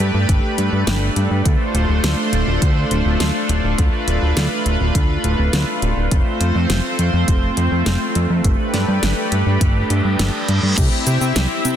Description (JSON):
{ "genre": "synthwave", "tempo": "103 BPM", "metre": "4/4", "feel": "straight", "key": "D dorian", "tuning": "A4 = 439 Hz", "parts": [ { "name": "lush unison pad", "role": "sustained chords", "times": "0.0-11.8 s", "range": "A3 to E5", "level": "-20 LUFS", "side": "equal", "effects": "chorus, sidechain pumping" }, { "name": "fat analog bass", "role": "bass", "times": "0.0-11.8 s", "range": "D1 to C3", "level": "-18 LUFS", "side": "equal", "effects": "none" }, { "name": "pop drum kit", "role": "drums", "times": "0.0-11.8 s", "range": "crash cymbal, hi-hat, shaker, snare drum", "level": "-24 LUFS", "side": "equal", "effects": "none" }, { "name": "electronic kick drum", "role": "drums", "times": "0.3-10.9 s", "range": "none", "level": "-17 LUFS", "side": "equal", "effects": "none" }, { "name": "reverse cymbal", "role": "sound effects", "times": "9.8-10.8 s", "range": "none", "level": "-26 LUFS", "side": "right 1 dB", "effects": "none" } ], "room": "light reverb", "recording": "dense, heavily limited modern master", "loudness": "-15 LUFS", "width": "side -10 dB against mid", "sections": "0.0-10.8 A section", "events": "reverse cymbal 9.8-10.8", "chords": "0.0 Gadd9; 1.5 Dm7; 6.1 F; 8.4 Gadd9; 10.8 C", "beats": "0.29 0.87 | 1.46 2.04 2.62 3.20 | 3.79 4.37 4.95 5.53 | 6.12 6.70 7.28 7.86 | 8.45 9.03 9.61 10.19 | 10.78 11.36" }